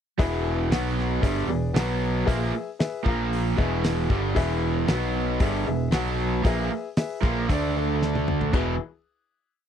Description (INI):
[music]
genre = classic rock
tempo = 115 BPM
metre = 4/4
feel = straight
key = E mixolydian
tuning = A4 = 439 Hz
[part]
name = warm baby grand piano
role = accompaniment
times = 0.2-8.8 s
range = D4 to F#5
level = -32 LUFS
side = left 8 dB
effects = none
[part]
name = cranked stack guitar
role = riff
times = 0.2-8.7 s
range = E2 to D4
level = -28 LUFS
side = right 13 dB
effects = overdrive
[part]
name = raw garage guitar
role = riff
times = 0.2-8.7 s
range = E2 to D4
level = -30 LUFS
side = left 13 dB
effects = overdrive
[part]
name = modern bright picked electric bass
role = bass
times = 0.2-8.8 s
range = E1 to D2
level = -28 LUFS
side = equal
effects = none
[part]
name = damped 70s drum kit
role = drums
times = 0.2-8.7 s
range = china cymbal, hi-hat, kick drum, snare drum, toms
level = -24 LUFS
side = equal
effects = none
[sound]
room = little or no reverb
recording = dry, close 1970s-style studio recording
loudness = -22 LUFS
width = side -8 dB against mid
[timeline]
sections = 0.2-8.5 riff; 8.5-9.7 final chord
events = drum fill 8.0-8.5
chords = 0.2 E; 0.7 B5; 1.2 E; 1.7 B5; 2.3 E; 3.0 A#5; 3.6 E; 4.9 B5; 5.4 E; 5.9 B5; 6.4 E; 7.5 D5; 8.5 E